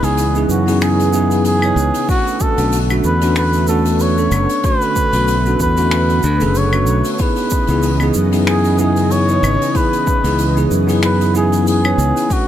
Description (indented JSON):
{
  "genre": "sunset chillout",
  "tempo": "94 BPM",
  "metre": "4/4",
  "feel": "swing 55% on 16ths",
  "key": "unclear",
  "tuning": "A4 = 440 Hz",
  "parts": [
    { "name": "trumpet with cup mute", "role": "melody", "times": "0.0-12.5 s", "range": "F#4 to C#5", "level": "-19 LUFS", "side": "equal", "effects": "digital delay" },
    { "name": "bell-like tine electric piano", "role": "accompaniment", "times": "0.0-12.5 s", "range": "A3 to C#5", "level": "-19 LUFS", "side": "equal", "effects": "auto-pan" },
    { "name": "lush unison pad", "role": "sustained chords", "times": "0.0-12.5 s", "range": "C#3 to D#5", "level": "-21 LUFS", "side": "left 1 dB", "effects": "chorus" },
    { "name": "modern bright fingered electric bass", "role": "bass", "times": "0.0-12.1 s", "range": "F#1 to F#2", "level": "-16 LUFS", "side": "equal", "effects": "none" },
    { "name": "jazz brush drum kit", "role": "drums", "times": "0.0-12.4 s", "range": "claves, finger snaps, hi-hat, shaker", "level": "-26 LUFS", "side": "left 1 dB", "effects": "none" },
    { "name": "electronic kick drum", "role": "drums", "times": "2.1-12.4 s", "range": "none", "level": "-19 LUFS", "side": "equal", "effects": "none" }
  ],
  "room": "light reverb, small room ambience",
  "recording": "none",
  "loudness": "-13 LUFS",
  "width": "side -11 dB against mid",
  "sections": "0.0-12.5 A section",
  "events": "none",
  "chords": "0.0 C#m9; 2.1 Bm9; 7.2 C#m9"
}